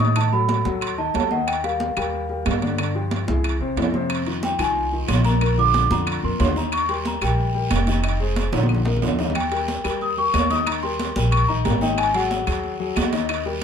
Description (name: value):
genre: Afro-Cuban jazz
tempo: 183 BPM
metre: 4/4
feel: straight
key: unclear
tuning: A4 = 444 Hz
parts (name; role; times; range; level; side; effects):
- large celesta; melody; 0.0-13.1 s; F5 to Eb6; -24 LUFS; equal; none
- warm concert grand piano; accompaniment; 0.0-13.6 s; Bb2 to Eb5; -26 LUFS; left 4 dB; none
- upright bass; bass; 0.0-13.6 s; F1 to A2; -24 LUFS; right 1 dB; none
- congas; percussion; 0.0-13.6 s; none; -29 LUFS; left 1 dB; none
- timbales; percussion; 0.0-13.6 s; none; -28 LUFS; right 7 dB; none
- claves; percussion; 0.2-13.5 s; none; -32 LUFS; left 5 dB; none
- guiro; percussion; 4.1-13.6 s; none; -35 LUFS; right 5 dB; none
room: moderate club reverb, RT60 0.7 s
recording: minimal, uncompressed stereo recording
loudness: -19 LUFS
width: side -7 dB against mid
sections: 0.0-9.4 A section; 9.4-13.6 A section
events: drum fill 8.5-9.4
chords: 0.2 Ebdim; 1.5 Eb; 2.8 G5; 3.4 Caug; 4.1 Fm7; 5.4 Bb; 6.7 Eb; 8.0 Fm7; 8.7 Bb; 9.4 Eb; 12.0 Ab5